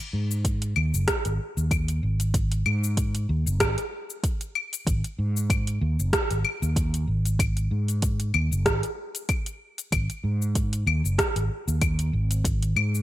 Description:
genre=organic downtempo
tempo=95 BPM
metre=4/4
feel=swing 55% on 16ths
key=unclear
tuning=A4 = 440 Hz
part: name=deep house drum kit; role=drums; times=0.0-13.0 s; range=cabasa, claves, hi-hat, rim click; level=-28 LUFS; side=left 1 dB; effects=overdrive, gated reverb
part: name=fretless electric bass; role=bass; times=0.1-13.0 s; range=F#1 to G#2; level=-24 LUFS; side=equal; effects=analog chorus
part: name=electronic kick drum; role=drums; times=0.4-12.6 s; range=none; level=-27 LUFS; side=equal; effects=overdrive
room=light reverb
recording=bright 1980s-style digital production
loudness=-23 LUFS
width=side -14 dB against mid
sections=0.0-13.0 A section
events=none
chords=none

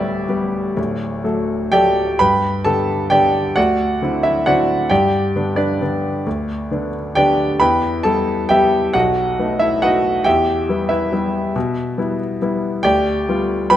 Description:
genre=classical, piano waltz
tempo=120-145 BPM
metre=3/4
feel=rubato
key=G major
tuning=A4 = 438 Hz
part: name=clear grand piano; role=solo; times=0.0-13.8 s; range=D1 to B5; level=-15 LUFS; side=equal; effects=none
room=moderate recital hall reverb, RT60 1.6 s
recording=close, detailed microphones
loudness=-15 LUFS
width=side -11 dB against mid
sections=0.0-2.2 A section; 2.2-13.8 A section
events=none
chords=0.0 G/D; 0.8 D; 2.2 G; 3.6 D9; 4.9 G; 7.6 Em; 8.9 B7; 10.3 Em; 12.8 G7/D

